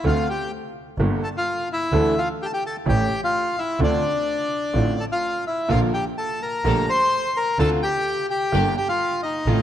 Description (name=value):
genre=tango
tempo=128 BPM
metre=4/4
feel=rubato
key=D minor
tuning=A4 = 441 Hz
part: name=bandoneon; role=melody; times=0.0-9.6 s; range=D4 to C6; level=-23 LUFS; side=left 1 dB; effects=none
part: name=clear upright piano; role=accompaniment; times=0.0-9.6 s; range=G1 to A4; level=-26 LUFS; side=right 1 dB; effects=none
part: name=clear double bass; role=bass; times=0.0-9.6 s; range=G1-20c to D2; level=-24 LUFS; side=right 1 dB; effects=none
part: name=rich chamber string section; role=stabs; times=5.7-9.6 s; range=A3 to Bb4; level=-33 LUFS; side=right 1 dB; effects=none
room=moderate concert hall reverb, RT60 2.1 s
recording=none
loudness=-20 LUFS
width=side -11 dB against mid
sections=0.0-9.6 A section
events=none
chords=0.1 Dm7; 1.0 Gm; 1.9 Dsus2; 2.9 A7; 3.8 Dm7; 5.7 Bb; 6.6 Gmadd9/Bb; 7.6 Dm7; 8.5 Gm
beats=| 0.06 0.52 0.99 1.46 | 1.93 2.40 2.87 3.33 | 3.81 4.28 4.75 5.23 | 5.70 6.18 6.65 7.12 | 7.59 8.06 8.53 8.99 | 9.46